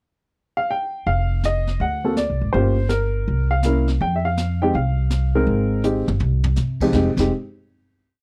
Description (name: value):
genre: jazz piano trio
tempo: 164 BPM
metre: 4/4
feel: swing 66% on 8ths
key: F minor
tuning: A4 = 439 Hz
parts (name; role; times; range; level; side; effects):
- dark baby grand piano; melody; 0.6-7.3 s; F2 to G5; -24 LUFS; equal; none
- upright bass; bass; 1.1-7.3 s; F1 to C3; -23 LUFS; equal; transformer saturation
- jazz brush drum kit; drums; 1.1-7.2 s; brushed snare drum, crash cymbal, hi-hat, kick drum, snare drum, toms; -30 LUFS; equal; none
room: little or no reverb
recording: dry, close 1970s-style studio recording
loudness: -21 LUFS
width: mono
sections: 0.0-1.1 pickup bar; 1.1-6.9 A section; 6.9-8.2 final chord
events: drum fill 5.8-6.6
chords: 0.0 N.C.; 1.1 Ebsus2/F; 1.8 D7; 2.5 Gm7b5; 3.3 C7b9; 4.0 Fm7; 6.9 N.C.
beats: 0.33 0.70 | 1.06 1.43 1.80 2.17 | 2.53 2.90 3.27 3.63 | 4.00 4.37 4.74 5.10 | 5.47 5.84 6.21 6.57 | 6.94